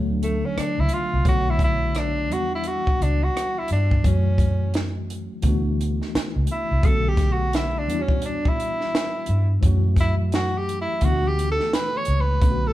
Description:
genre	R&B, neo-soul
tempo	86 BPM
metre	4/4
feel	swing 62% on 16ths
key	E dorian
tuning	A4 = 441 Hz
part	tine electric piano	accompaniment	0.0-12.7 s	D3 to C#5	-29 LUFS	left 1 dB	overdrive, fast stereo tremolo
part	vintage muted fingered electric bass	bass	0.0-12.7 s	B1 to G2	-23 LUFS	equal	none
part	warm tenor saxophone	melody	0.2-12.7 s	A3 to C#5	-25 LUFS	equal	none
part	compact cocktail drum kit	drums	0.2-12.6 s	hi-hat, kick drum, rim click, snare drum	-24 LUFS	equal	none
room	moderate large studio reverb, RT60 1.4 s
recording	band playing live in one room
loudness	-20 LUFS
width	side -15 dB against mid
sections	0.0-12.7 A section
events	tenor saxophone solo 0.0-12.7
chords	0.0 D6; 1.2 Bm9; 2.3 Em9; 4.0 F#m7; 5.4 D69; 6.8 Bm9; 7.9 Em9; 9.6 F#m7; 11.0 D69

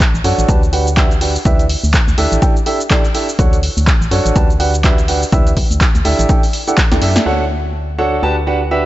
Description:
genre	piano house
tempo	124 BPM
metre	4/4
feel	swing 58% on 16ths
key	D major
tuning	A4 = 439 Hz
part	organ-like FM bass	bass	0.0-8.9 s	A1 to F#2	-17 LUFS	equal	tube saturation, sidechain pumping
part	electronic kick drum	drums	0.0-6.9 s	none	-14 LUFS	equal	none
part	punchy analog drum machine	drums	0.0-8.8 s	crash cymbal, handclaps, hi-hat, shaker, snare drum	-20 LUFS	equal	low-pass filter on hats, low-pass filter on snare, low-pass filter on perc, low-pass filter on cymbals
part	bright grand piano	riff	0.2-8.8 s	D4 to A5	-17 LUFS	right 2 dB	sidechain pumping, low-pass filter, digital delay
room	light reverb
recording	dark, warm production, nothing above 7.9 kHz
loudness	-11 LUFS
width	side -15 dB against mid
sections	0.0-7.3 A section; 7.3-8.9 B section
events	drum fill 6.9-7.3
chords	0.5 Gmaj7/D; 1.5 Em7/D; 2.2 A7sus4; 3.4 Dmaj7; 4.4 Gmaj7/D; 5.3 Em7/D; 6.0 A7sus4; 7.3 Dmaj7; 8.2 Gmaj7/D

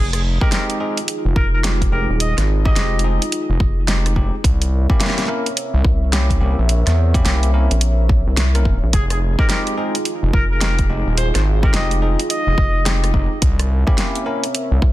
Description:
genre	glitch hop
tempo	107 BPM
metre	4/4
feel	swing 62% on 16ths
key	F minor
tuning	A4 = 440 Hz
part	warm trumpet	melody	0.0-3.0, 8.9-12.9 s	Ab4 to Eb5	-26 LUFS	left 1 dB	ping-pong delay
part	dark analog pad	sustained chords	0.0-14.9 s	C4 to E5	-27 LUFS	right 2 dB	chorus, sidechain pumping
part	gritty driven synth bass	bass	0.0-14.8 s	Eb1 to E2	-17 LUFS	equal	tube saturation
part	pop drum kit	drums	0.1-14.7 s	hi-hat, rim click, snare drum	-23 LUFS	right 1 dB	small room ambience
part	bell-like tine electric piano	stabs	0.4-14.4 s	Ab3 to Bb4	-26 LUFS	equal	sidechain pumping, ping-pong delay
part	electronic kick drum	drums	0.4-14.9 s	none	-18 LUFS	equal	small room ambience
part	rubbery square bass	bass	1.4-14.9 s	F1 to C2	-18 LUFS	equal	none
room	light reverb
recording	dense, heavily limited modern master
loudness	-15 LUFS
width	side -16 dB against mid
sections	0.0-14.9 A section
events	none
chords	0.0 Fm9; 4.4 C7b9; 8.9 Fm9; 13.4 C7b9

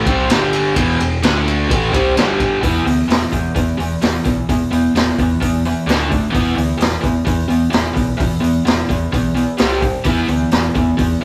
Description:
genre	garage rock duo or trio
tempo	129 BPM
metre	4/4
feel	straight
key	E minor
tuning	A4 = 440 Hz
part	raw garage guitar	riff	0.0-11.2 s	E2 to E4	-19 LUFS	equal	overdrive
part	hollow-body short-scale fingered electric bass	bass	0.0-11.2 s	E1 to E2	-25 LUFS	equal	tube saturation
part	raw garage drum kit	drums	0.1-11.1 s	hi-hat, kick drum, ride cymbal, snare drum	-21 LUFS	equal	none
room	moderate stone room reverb, RT60 1.1 s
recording	rough rehearsal-room recording, warm saturation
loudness	-16 LUFS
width	mono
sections	0.0-2.6 A section; 2.6-11.2 B section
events	none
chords	0.3 G5; 0.8 E5; 1.2 D5; 1.7 Em; 2.2 G5; 2.6 E5; 5.9 D5; 6.3 E5; 9.6 C5; 10.1 E5

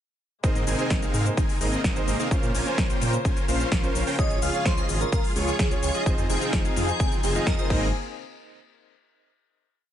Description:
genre	EDM, festival progressive house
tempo	128 BPM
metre	4/4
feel	straight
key	Ab major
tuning	A4 = 440 Hz
part	warm concert grand piano	accompaniment	0.4-7.9 s	Db4 to Eb5	-32 LUFS	right 2 dB	sidechain pumping, ping-pong delay
part	dark chamber string section	sustained chords	0.4-7.9 s	C3 to C5	-34 LUFS	left 3 dB	sidechain pumping
part	dense compressed supersaw	riff	0.4-7.9 s	C4 to Ab5	-29 LUFS	equal	sidechain pumping, ping-pong delay
part	wide detuned saw bass	bass	0.4-7.9 s	F1 to Bb2	-29 LUFS	equal	chorus, sidechain pumping
part	big-room dance drum kit	drums	0.4-7.8 s	crash cymbal, hi-hat, shaker, snare drum	-32 LUFS	left 1 dB	overdrive, studio reverb
part	electronic kick drum	drums	0.4-7.8 s	none	-25 LUFS	equal	overdrive, studio reverb
part	airy dreamy lead	melody	4.2-7.7 s	Ab4 to F5	-31 LUFS	equal	chorus, ping-pong delay
room	digital ambience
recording	nothing above 10.8 kHz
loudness	-22 LUFS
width	side -10 dB against mid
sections	0.4-7.9 drop; 7.9-9.8 final hit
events	drop 0.4-7.9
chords	0.4 Abadd9; 2.3 Bbmadd9; 4.2 Db; 6.1 Fm7; 7.7 Abadd9; 7.9 N.C.

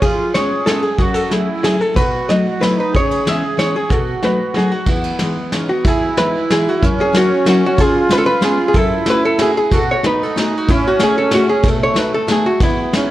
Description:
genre	musette waltz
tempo	186 BPM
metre	3/4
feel	straight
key	E major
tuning	A4 = 442 Hz
part	archtop guitar, miked and amplified	melody	0.0-13.1 s	E4 to E5	-17 LUFS	equal	none
part	accordion	second line	0.0-13.1 s	A3 to G#4	-20 LUFS	right 3 dB	light tremolo tuning
part	picked steel-string acoustic guitar	accompaniment	0.0-13.1 s	E2 to G#4	-20 LUFS	left 2 dB	none
part	soft brush drum kit	drums	0.0-13.0 s	kick drum, ride cymbal, snare drum	-19 LUFS	equal	none
room	moderate scoring stage reverb, RT60 2.1 s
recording	worn, warbling old tape, cassette tape, warbly pitch drift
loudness	-13 LUFS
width	side -14 dB against mid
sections	0.0-5.9 A section; 5.9-13.1 A section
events	none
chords	0.0 C#7/E#; 1.0 F#m7; 2.0 B7; 2.9 C#m7; 3.9 B7; 4.9 Emaj7; 6.8 F#7; 7.8 C#7; 8.7 F#m7; 9.7 B7; 10.7 Amaj7; 11.6 B7

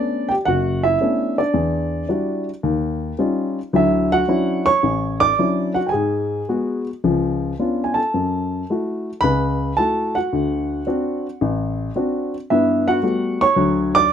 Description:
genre	solo jazz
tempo	110 BPM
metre	4/4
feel	swing 69% on 8ths, rubato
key	unclear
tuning	A4 = 435 Hz
part	dark baby grand piano	solo	0.0-14.1 s	F#1 to D6	-17 LUFS	equal	none
room	light reverb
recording	none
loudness	-18 LUFS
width	side -8 dB against mid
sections	0.0-14.1 A section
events	none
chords	0.0 Bm9; 1.6 Em9; 2.6 D#9; 3.7 Dmaj9; 5.9 G#m7; 7.0 C#7b9; 8.1 F#m7; 10.3 D7; 12.5 Gmaj9

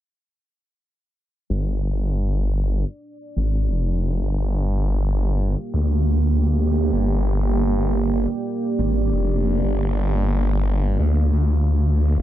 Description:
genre	drum and bass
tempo	177 BPM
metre	4/4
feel	straight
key	G phrygian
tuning	A4 = 440 Hz
part	deep dark ambient pad	sustained chords	3.3-12.2 s	Bb3 to F5	-26 LUFS	right 3 dB	chorus, built-in reverb
part	snarling distorted saw bass	bass	1.5-12.2 s	F1 to D2	-19 LUFS	equal	overdrive
room	little or no reverb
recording	low-pass filter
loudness	-19 LUFS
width	side -13 dB against mid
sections	1.5-12.2 A section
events	filter sweep 1.5-12.2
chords	1.5 Gm

